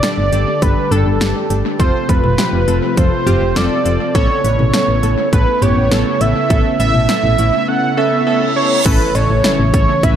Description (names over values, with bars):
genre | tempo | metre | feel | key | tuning
synth-pop | 102 BPM | 4/4 | straight | unclear | A4 = 440 Hz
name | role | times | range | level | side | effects
octave-doubled lead | melody | 0.0-10.2 s | A4 to F#5 | -17 LUFS | right 2 dB | chorus, analog delay
warm analog keys | accompaniment | 0.0-10.2 s | B3 to B4 | -20 LUFS | left 1 dB | chorus, analog delay
string machine, violas | sustained chords | 0.0-10.2 s | C3 to G4 | -22 LUFS | left 1 dB | ensemble chorus
house drum kit | drums | 0.0-10.2 s | cowbell, crash cymbal, hi-hat, kick drum, snare drum, toms | -18 LUFS | equal | overdrive, analog delay
solid FM bass | bass | 0.2-10.2 s | F1 to A1 | -17 LUFS | equal | none
reverse cymbal and impact | sound effects | 8.3-10.2 s | none | -24 LUFS | right 2 dB | none
room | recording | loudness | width
light reverb | echo-heavy mix | -12 LUFS | side -9 dB against mid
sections
0.0-8.9 A section; 8.9-10.2 B section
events
reverse cymbal 8.3-8.9; impact 8.9-10.2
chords
0.0 Gsus2; 1.8 F; 4.2 Aadd9; 8.9 A